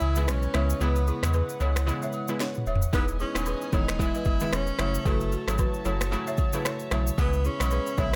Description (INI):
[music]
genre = afrobeats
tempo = 113 BPM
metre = 4/4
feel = swing 58% on 16ths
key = unclear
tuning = A4 = 440 Hz
[part]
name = breathy tenor saxophone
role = melody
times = 0.0-8.2 s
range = A3 to E4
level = -35 LUFS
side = equal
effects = digital delay
[part]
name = glassy wavetable pluck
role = accompaniment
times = 0.0-8.2 s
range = C#3 to E4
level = -35 LUFS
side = equal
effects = chorus
[part]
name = warm studio string section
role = sustained chords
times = 0.0-8.2 s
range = E3 to B5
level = -43 LUFS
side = equal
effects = none
[part]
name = warm sub bass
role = bass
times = 0.0-8.2 s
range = D#1 to E2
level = -30 LUFS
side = equal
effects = none
[part]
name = afro-pop drum kit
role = drums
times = 0.0-8.2 s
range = finger snaps, kick drum, rim click, shaker, snare drum, toms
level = -31 LUFS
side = equal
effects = none
[part]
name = agogo bells and woodblock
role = percussion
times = 0.0-8.1 s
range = none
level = -41 LUFS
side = equal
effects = none
[part]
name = balafon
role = riff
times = 0.2-8.1 s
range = E4 to E5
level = -37 LUFS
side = equal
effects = digital delay
[sound]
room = light reverb, small room ambience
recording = none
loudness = -27 LUFS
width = mono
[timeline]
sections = 0.0-8.2 A section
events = break 0.0-2.9; drum fill 2.4-2.9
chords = 0.0 C#m7; 4.8 F#m7; 7.2 C#m7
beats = 0.28 | 0.81 1.34 1.87 2.40 | 2.93 3.46 4.00 4.53 | 5.06 5.59 6.12 6.65 | 7.18 7.71